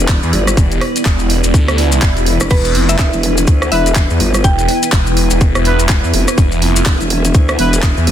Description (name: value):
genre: bass house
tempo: 124 BPM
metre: 4/4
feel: swing 59% on 16ths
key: E minor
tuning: A4 = 440 Hz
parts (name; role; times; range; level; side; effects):
- dark analog pad; sustained chords; 0.0-8.1 s; B3 to E5; -22 LUFS; right 2 dB; chorus, sidechain pumping
- growl bass; bass; 0.0-8.1 s; E1 to D2; -16 LUFS; equal; chorus, overdrive, sidechain pumping
- maracas; percussion; 0.0-8.1 s; none; -23 LUFS; left 7 dB; none
- granular cloud pad; texture; 0.0-8.1 s; E4 to E5; -22 LUFS; equal; built-in reverb, sidechain pumping
- electronic kick drum; drums; 0.1-7.9 s; none; -12 LUFS; equal; overdrive
- garage drum kit; drums; 0.1-8.1 s; crash cymbal, handclaps, hi-hat, rim click; -19 LUFS; right 1 dB; overdrive
- phased detuned saw bass; bass; 0.2-8.1 s; E1 to E2; -15 LUFS; equal; phaser, overdrive, sidechain pumping
- swell; sound effects; 1.8-2.5 s; none; -25 LUFS; equal; none
- mallet-like synth pluck; melody; 2.5-4.8 s; B4 to G5; -20 LUFS; left 1 dB; chorus, dub echo
- warm horn section; stabs; 3.7-7.7 s; B3 to B4; -22 LUFS; right 4 dB; sidechain pumping, dub echo
room: digital ambience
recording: dense, heavily limited modern master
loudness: -10 LUFS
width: side -10 dB against mid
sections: 0.0-8.1 A section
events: swell 1.8-2.5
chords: 0.0 E5